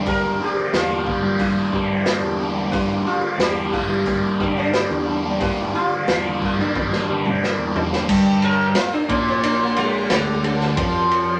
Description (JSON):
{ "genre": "psychedelic rock", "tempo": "90 BPM", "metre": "4/4", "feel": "straight", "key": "G dorian", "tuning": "A4 = 440 Hz", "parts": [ { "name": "combo organ", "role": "sustained chords", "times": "0.0-11.4 s", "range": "Bb3 to G5", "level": "-34 LUFS", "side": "equal", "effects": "none" }, { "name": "overdriven electric guitar", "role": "riff", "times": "0.0-11.4 s", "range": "G2 to D4", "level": "-23 LUFS", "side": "equal", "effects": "phaser" }, { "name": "picked electric bass", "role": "bass", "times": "0.0-11.4 s", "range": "G1 to G2", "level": "-29 LUFS", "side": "equal", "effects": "none" }, { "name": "sitar", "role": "melody", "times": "0.1-11.4 s", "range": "G3 to Bb4", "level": "-27 LUFS", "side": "equal", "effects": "none" }, { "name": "raw garage drum kit", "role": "drums", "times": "0.1-11.3 s", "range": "crash cymbal, hi-hat, kick drum, ride cymbal, snare drum, toms", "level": "-27 LUFS", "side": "equal", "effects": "none" } ], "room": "wet studio reverb, RT60 0.7 s", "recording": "none", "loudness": "-20 LUFS", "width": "mono", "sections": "0.0-8.1 A section; 8.1-11.4 B section", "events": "drum fill 6.8-8.1; sitar solo 8.1-11.4", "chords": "0.0 Gm", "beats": "| 0.07 0.73 1.40 2.07 | 2.74 3.41 4.08 4.74 | 5.41 6.08 6.75 7.42 | 8.10 8.77 9.44 10.11 | 10.78" }